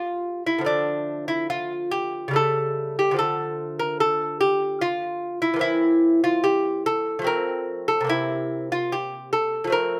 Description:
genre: classical, baroque-style dance for lute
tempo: 73 BPM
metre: 3/4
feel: rubato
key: D minor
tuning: A4 = 441 Hz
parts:
  - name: lute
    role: solo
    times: 0.0-10.0 s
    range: C3 to Bb4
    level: -24 LUFS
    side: equal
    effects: none
room: little or no reverb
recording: recorded outdoors, with no room sound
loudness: -24 LUFS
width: mono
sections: 0.0-10.0 A section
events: none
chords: 0.0 A7/C#; 3.2 Dm; 5.6 C7/E; 7.3 F; 8.1 C7

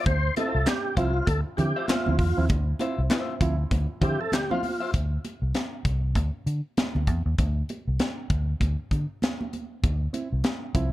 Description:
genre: funk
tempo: 98 BPM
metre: 4/4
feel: swing 60% on 16ths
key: D minor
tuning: A4 = 443 Hz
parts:
  - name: tonewheel organ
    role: melody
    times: 0.0-4.9 s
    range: F4 to C5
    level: -29 LUFS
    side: equal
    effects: overdrive, chorus vibrato, slow rotary speaker
  - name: electric guitar at the edge of break-up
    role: accompaniment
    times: 0.0-4.9 s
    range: F4 to F5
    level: -33 LUFS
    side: left 4 dB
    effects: none
  - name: barky reed electric piano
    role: stabs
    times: 0.1-4.7, 9.8-10.9 s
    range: D3 to E4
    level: -32 LUFS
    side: right 4 dB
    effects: overdrive, spring reverb
  - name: vintage muted fingered electric bass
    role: bass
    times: 0.1-10.9 s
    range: C2 to D3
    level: -25 LUFS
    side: equal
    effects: none
  - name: crisp fusion drum kit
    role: drums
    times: 0.1-10.9 s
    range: handclaps, hi-hat, kick drum, snare drum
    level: -28 LUFS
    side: equal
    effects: none
  - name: congas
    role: percussion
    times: 0.1-10.6 s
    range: none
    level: -34 LUFS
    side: right 2 dB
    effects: none
  - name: group handclap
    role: percussion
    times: 0.7-4.5 s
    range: none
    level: -41 LUFS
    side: left 2 dB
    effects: none
room: small room ambience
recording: dark, warm production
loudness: -24 LUFS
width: side -16 dB against mid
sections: 0.0-4.9 A section; 4.9-10.9 B section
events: tonewheel organ solo 0.0-4.9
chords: 0.0 Dm9; 4.9 D7(no3)

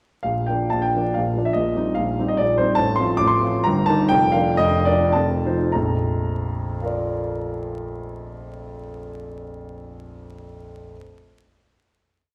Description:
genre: classical, romantic triple-time dance for piano with dotted rhythms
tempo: 96-155 BPM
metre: 3/4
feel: rubato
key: Bb major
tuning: A4 = 440 Hz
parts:
  - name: warm grand piano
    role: solo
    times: 0.2-10.9 s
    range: F1 to D6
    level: -22 LUFS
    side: equal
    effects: none
room: wet recital hall reverb, RT60 1.5 s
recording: recorded in a church or concert hall, vinyl crackle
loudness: -21 LUFS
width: mono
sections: 0.2-5.7 A section; 5.7-8.9 final chord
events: slowing down 2.2-5.7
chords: 0.2 Bb; 1.6 Cm7/Bb; 2.8 F/A; 3.7 Eb/G; 4.1 Bb/F; 5.2 F7; 5.7 Bb

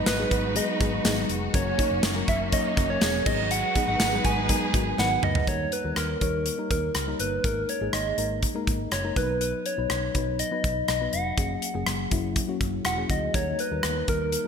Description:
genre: 1980s-style pop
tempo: 122 BPM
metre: 4/4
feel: straight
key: G# minor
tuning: A4 = 439 Hz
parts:
  - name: soft struck synth lead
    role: melody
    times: 0.0-14.5 s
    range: A#4 to G#5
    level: -28 LUFS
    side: right 2 dB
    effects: chorus, digital delay
  - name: warm studio violin section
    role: second line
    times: 0.0-5.2 s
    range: B3 to G#4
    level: -37 LUFS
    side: right 2 dB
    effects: digital delay
  - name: mellow FM electric piano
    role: accompaniment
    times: 0.0-14.5 s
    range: F#3 to C#5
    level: -31 LUFS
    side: left 4 dB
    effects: chorus
  - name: warm studio string section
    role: sustained chords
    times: 0.0-5.5 s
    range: G#3 to B4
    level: -32 LUFS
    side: right 1 dB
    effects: none
  - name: vintage muted fingered electric bass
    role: bass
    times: 0.0-14.3 s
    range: E1 to D#2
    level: -32 LUFS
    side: equal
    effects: none
  - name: modern studio drum kit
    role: drums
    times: 0.1-14.4 s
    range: crash cymbal, hi-hat, kick drum, rim click, snare drum, tambourine, toms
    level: -27 LUFS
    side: equal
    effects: gated reverb
room: moderate lush hall reverb, RT60 1.7 s, small room ambience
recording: bright 1980s-style digital production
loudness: -23 LUFS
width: side -6 dB against mid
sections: 0.0-5.5 A section; 5.5-14.5 B section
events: drum fill 5.0-5.5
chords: 0.0 G#m7; 1.5 F#; 3.3 G#m7; 5.5 D#; 7.4 G#sus2; 9.2 B; 11.4 F#add9; 13.3 D#

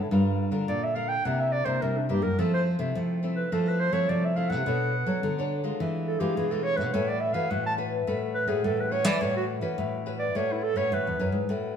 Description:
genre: samba and choro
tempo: 106 BPM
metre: 4/4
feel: straight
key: unclear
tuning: A4 = 440 Hz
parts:
  - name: nylon-string guitar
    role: accompaniment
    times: 0.0-11.8 s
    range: B2 to C#5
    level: -32 LUFS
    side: left 4 dB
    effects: none
  - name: nylon-string guitar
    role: bass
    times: 0.0-11.8 s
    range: E2 to F#3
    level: -28 LUFS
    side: equal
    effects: none
  - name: warm clarinet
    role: melody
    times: 0.7-11.4 s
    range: D4 to A5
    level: -28 LUFS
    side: right 2 dB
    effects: none
room: wet stone room reverb, RT60 1.4 s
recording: band playing live in one room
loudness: -24 LUFS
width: side -8 dB against mid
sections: 0.0-11.5 A section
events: clarinet solo 0.0-11.5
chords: 0.1 Gm7; 1.3 C9; 2.4 Fmaj7; 4.7 Bm9; 5.8 E7b9; 6.9 A69

